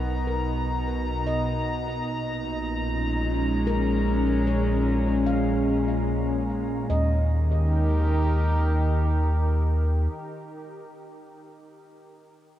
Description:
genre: ambient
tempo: 75 BPM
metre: 3/4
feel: straight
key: unclear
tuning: A4 = 440 Hz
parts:
  - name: warbly tape-like pad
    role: sustained chords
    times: 0.0-10.1 s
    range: Bb2 to A#5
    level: -26 LUFS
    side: equal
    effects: chorus, built-in reverb, phaser
  - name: handpan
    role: arpeggios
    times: 0.0-10.8 s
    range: A#4 to F5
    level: -35 LUFS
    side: left 1 dB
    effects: tape echo
  - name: warm sub bass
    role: bass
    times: 0.0-10.1 s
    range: Bb1 to Eb2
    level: -25 LUFS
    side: equal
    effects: none
room: moderate huge ambient reverb, RT60 8.3 s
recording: none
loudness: -22 LUFS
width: side -12 dB against mid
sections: 0.0-6.9 A section; 6.9-9.3 B section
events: none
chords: 0.0 Bmaj7; 2.1 Bbm7; 6.9 Eb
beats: 0.46 1.26 | 2.06 2.86 3.65 | 4.45 5.26 6.08 | 6.90 7.70 8.51

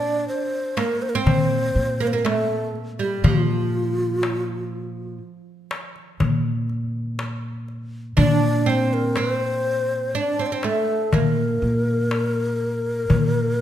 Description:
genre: Turkish makam ensemble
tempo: 122 BPM (eighths)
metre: 10/8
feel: straight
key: Bb makam rast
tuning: A4 = 441 Hz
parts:
  - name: breathy mellow low ney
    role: melody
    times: 0.0-13.6 s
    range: F4 to D5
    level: -24 LUFS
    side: left 1 dB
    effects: none
  - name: oud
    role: second line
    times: 0.0-13.6 s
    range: F3 to D4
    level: -26 LUFS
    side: right 4 dB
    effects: none
  - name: upright bass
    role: bass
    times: 0.0-13.6 s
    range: Bb2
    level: -24 LUFS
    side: equal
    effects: none
  - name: darbuka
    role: percussion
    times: 0.3-13.3 s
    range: none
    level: -24 LUFS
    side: left 3 dB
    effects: none
room: moderate recital hall reverb, RT60 1.7 s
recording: minimal, uncompressed stereo recording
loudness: -20 LUFS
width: side -11 dB against mid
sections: 0.0-13.6 A section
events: none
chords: none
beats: 0.28 0.78 1.27 1.76 2.25 2.75 | 3.24 3.73 4.23 4.72 5.21 5.71 6.20 6.70 7.19 7.68 | 8.17 8.67 9.16 9.65 10.15 10.64 11.13 11.63 12.12 12.61 | 13.11 13.60

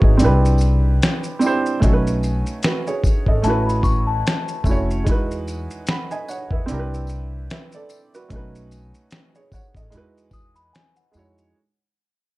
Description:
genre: lo-fi hip hop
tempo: 74 BPM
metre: 4/4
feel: swing 57% on 16ths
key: E major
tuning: A4 = 439 Hz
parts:
  - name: felt-muted upright piano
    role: accompaniment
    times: 0.0-11.6 s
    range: G#3 to B5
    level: -23 LUFS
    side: right 3 dB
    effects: cassette tape
  - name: upright bass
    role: bass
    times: 0.0-11.5 s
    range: F1 to F2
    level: -20 LUFS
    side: equal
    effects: none
  - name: dusty soul sampler-style drum kit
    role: drums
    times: 0.0-11.5 s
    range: finger snaps, hi-hat, kick drum, shaker, snare drum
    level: -20 LUFS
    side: equal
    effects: none
  - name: tambourine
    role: percussion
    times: 0.6-11.4 s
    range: none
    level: -42 LUFS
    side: left 5 dB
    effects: none
  - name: celesta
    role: second line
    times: 3.4-5.0, 10.3-11.5 s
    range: F#5 to D#6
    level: -25 LUFS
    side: left 6 dB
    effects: analog delay
room: light reverb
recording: dark, warm production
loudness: -17 LUFS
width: side -19 dB against mid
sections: 0.0-11.5 A section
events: fade-out 0.0-11.5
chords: 0.2 Cmaj9; 1.8 B9; 3.4 A69; 5.1 Emaj9; 6.7 Cmaj9; 8.3 B9; 9.9 Emaj9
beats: 0.20 1.01 | 1.82 2.63 3.44 4.25 | 5.06 5.87 6.68 7.50 | 8.31 9.12 9.93 10.74

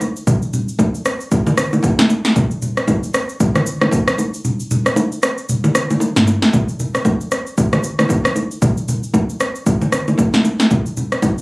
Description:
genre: amapiano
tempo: 115 BPM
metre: 4/4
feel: swing 58% on 16ths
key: none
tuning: none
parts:
  - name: deep house drum kit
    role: drums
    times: 0.0-11.4 s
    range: kick drum, rim click, shaker, snare drum, toms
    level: -16 LUFS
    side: equal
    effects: none
  - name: bongos and congas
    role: percussion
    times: 0.0-11.4 s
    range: none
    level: -18 LUFS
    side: equal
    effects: none
room: moderate studio reverb, RT60 0.5 s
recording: recorded on a phone in the room, club reverb, compression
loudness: -14 LUFS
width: side -25 dB against mid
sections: 0.0-11.4 A section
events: kick muted 4.4-6.5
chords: none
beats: | 0.27 0.79 1.32 1.84 | 2.36 2.88 3.40 3.92 | 4.45 4.97 5.49 6.01 | 6.53 7.05 7.58 8.10 | 8.62 9.14 9.66 10.19 | 10.71 11.23

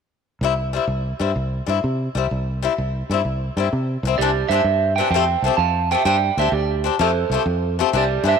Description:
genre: highlife guitar band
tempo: 128 BPM (dotted quarters)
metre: 12/8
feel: straight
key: C major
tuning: A4 = 440 Hz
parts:
  - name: picked swing-style acoustic guitar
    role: accompaniment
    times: 0.4-8.4 s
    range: E3 to G4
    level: -22 LUFS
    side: left 9 dB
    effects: none
  - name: fingered electric bass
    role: bass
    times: 0.4-8.4 s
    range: C2 to C3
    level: -23 LUFS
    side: equal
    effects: none
  - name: electric guitar at the edge of break-up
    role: melody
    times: 4.2-8.4 s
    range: G4 to A5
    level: -20 LUFS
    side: right 10 dB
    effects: wide subtle chorus, tape echo
room: moderate plate reverb, RT60 3.4 s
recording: 1960s-style stereo with parts hard left and right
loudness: -18 LUFS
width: side -6 dB against mid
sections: 0.4-4.2 A section; 4.2-8.4 B section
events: none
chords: 0.4 C; 4.2 Cadd9; 5.1 Fadd9; 6.1 Gsus4; 7.0 Fadd9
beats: | 0.42 0.90 1.37 1.84 | 2.31 2.78 3.25 3.72 | 4.19 4.66 5.13 5.60 | 6.07 6.53 7.00 7.47 | 7.94

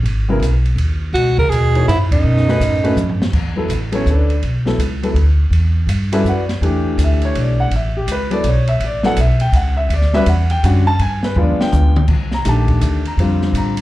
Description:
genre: modal jazz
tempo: 165 BPM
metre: 3/4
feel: swing 64% on 8ths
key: C# minor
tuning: A4 = 439 Hz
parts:
  - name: upright bass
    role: bass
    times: 0.0-13.8 s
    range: G#1 to B2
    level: -16 LUFS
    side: equal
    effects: none
  - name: open jazz drum kit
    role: drums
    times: 0.1-13.8 s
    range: crash cymbal, hi-hat, kick drum, ride cymbal, snare drum, toms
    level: -23 LUFS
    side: equal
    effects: none
  - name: warm concert grand piano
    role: accompaniment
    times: 0.3-13.8 s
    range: C#3 to Bb5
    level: -19 LUFS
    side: left 1 dB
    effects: slapback echo
  - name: clear alto saxophone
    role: melody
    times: 1.1-3.2 s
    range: D#4 to A#4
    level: -18 LUFS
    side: right 3 dB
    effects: slapback echo
  - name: mellow bass clarinet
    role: second line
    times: 1.1-3.2 s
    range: F#2 to C#3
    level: -19 LUFS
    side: equal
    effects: slapback echo
room: little or no reverb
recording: live gig heard through the venue's PA, club reverb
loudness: -13 LUFS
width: side -16 dB against mid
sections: 0.0-3.3 A section; 3.3-12.1 B section; 12.1-13.8 B section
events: band accent 2.1; drum fill 3.0-3.3, 11.4-12.1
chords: 0.0 C#9sus4; 2.2 B7; 3.3 A9sus4; 11.0 G7b9; 12.1 C13sus4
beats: | 0.06 0.42 0.79 | 1.15 1.51 1.88 | 2.24 2.61 2.97 | 3.33 3.70 4.06 | 4.43 4.79 5.16 | 5.52 5.89 6.25 | 6.62 6.98 7.35 | 7.71 8.07 8.44 | 8.80 9.17 9.53 | 9.90 10.26 10.63 | 10.99 11.36 11.72 | 12.09 12.45 12.81 | 13.18 13.54

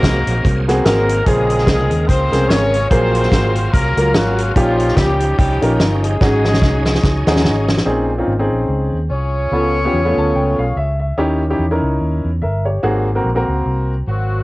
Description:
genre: uptempo gospel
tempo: 145 BPM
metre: 4/4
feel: swing 57% on 8ths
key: unclear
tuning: A4 = 442 Hz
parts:
  - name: warm horn section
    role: melody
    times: 0.0-11.0, 14.1-14.4 s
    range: F3 to Db5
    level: -20 LUFS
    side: left 1 dB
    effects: cassette tape
  - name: clear baby grand piano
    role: accompaniment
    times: 0.0-13.9 s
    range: Ab2 to A5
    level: -18 LUFS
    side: equal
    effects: none
  - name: bright tonewheel organ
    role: sustained chords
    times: 0.0-7.9 s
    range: Db3 to F5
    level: -25 LUFS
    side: right 1 dB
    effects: slow rotary speaker, chorus vibrato
  - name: fingered electric bass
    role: bass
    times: 0.0-14.4 s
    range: G1 to E2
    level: -18 LUFS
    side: equal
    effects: none
  - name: natural country drum kit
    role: drums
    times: 0.0-7.9 s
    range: hi-hat, kick drum, snare drum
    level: -17 LUFS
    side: equal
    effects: cassette tape
  - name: dark alto saxophone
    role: melody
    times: 9.1-11.0 s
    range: Db5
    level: -23 LUFS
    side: right 1 dB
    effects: cassette tape
room: light reverb, small room reverb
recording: home recording on cassette, nothing above 10.8 kHz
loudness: -13 LUFS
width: side -20 dB against mid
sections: 0.0-7.9 A section; 7.9-14.4 B section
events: drum fill 6.2-7.9; grand piano fill 9.9-11.2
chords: 0.0 Ab9; 1.3 Bbm9; 2.9 Gbmaj9; 4.6 Eb9/Bb; 6.2 Ab7sus4; 7.9 Bbm11; 9.5 Db7alt; 11.2 Eb7b9; 12.8 Ab9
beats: 0.03 0.44 0.85 | 1.27 1.68 2.09 2.50 | 2.91 3.32 3.74 4.15 | 4.56 4.97 5.38 5.79 | 6.21 6.62 7.03 7.45 | 7.86 8.27 8.69 9.10 | 9.52 9.93 10.35 10.76 | 11.17 11.59 12.00 12.42 | 12.83 13.25 13.66 14.07

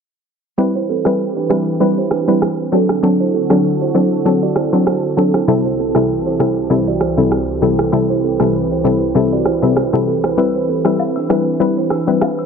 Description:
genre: afrobeats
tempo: 98 BPM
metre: 4/4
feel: swing 55% on 16ths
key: unclear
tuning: A4 = 441 Hz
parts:
  - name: hollow square pluck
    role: accompaniment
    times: 0.6-12.5 s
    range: C3 to B4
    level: -16 LUFS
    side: left 2 dB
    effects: chorus
  - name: warm analog pad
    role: sustained chords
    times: 0.8-12.5 s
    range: C2 to B4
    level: -22 LUFS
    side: equal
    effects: chorus
  - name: kalimba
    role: riff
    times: 0.8-12.0 s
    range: C4 to D5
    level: -20 LUFS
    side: right 8 dB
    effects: ping-pong delay
  - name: electronic rim click and shaker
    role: drums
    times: 1.1-12.4 s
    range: none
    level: -22 LUFS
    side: right 2 dB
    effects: none
  - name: agogo bells and woodblock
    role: percussion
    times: 10.4-12.5 s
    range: none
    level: -27 LUFS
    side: left 5 dB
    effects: none
room: light reverb, studio ambience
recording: low-pass filter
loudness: -13 LUFS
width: side -6 dB against mid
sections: 0.6-12.5 A section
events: kick muted 0.6-10.4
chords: 0.6 Cmaj7; 2.7 D7; 5.5 Am7/C; 10.4 Cmaj7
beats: | 0.58 1.19 1.80 2.42 | 3.03 3.64 4.25 4.87 | 5.48 6.09 6.70 7.32 | 7.93 8.54 9.15 9.76 | 10.38 10.99 11.60 12.21

